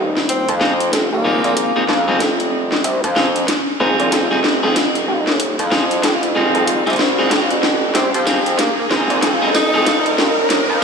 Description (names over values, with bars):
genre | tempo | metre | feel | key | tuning
glitch hop | 94 BPM | 4/4 | swing 61% on 16ths | F minor | A4 = 439 Hz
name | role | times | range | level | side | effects
gritty driven synth bass | bass | 0.0-10.8 s | Eb1 to F2 | -19 LUFS | equal | overdrive, high-pass filter
riser | sound effects | 0.1-10.8 s | none | -24 LUFS | right 2 dB | none
drum and bass drum kit | drums | 0.2-10.7 s | hi-hat, rim click, snare drum, tambourine | -19 LUFS | equal | none
clear tenor saxophone | melody | 0.3-2.0, 8.0-10.2 s | Bb3 to Eb4 | -22 LUFS | equal | analog delay
electric guitar at the edge of break-up | stabs | 0.6-10.8 s | C4 to Ab4 | -20 LUFS | equal | analog delay
room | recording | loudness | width
wet lush hall reverb, RT60 3.1 s | dreamy mix soaked in reverb, high-pass filter, studio ambience | -14 LUFS | side -5 dB against mid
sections
0.0-10.8 A section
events
build-up 0.0-10.8; drum fill 0.0-10.8; riser 0.1-10.8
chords
0.0 Fm7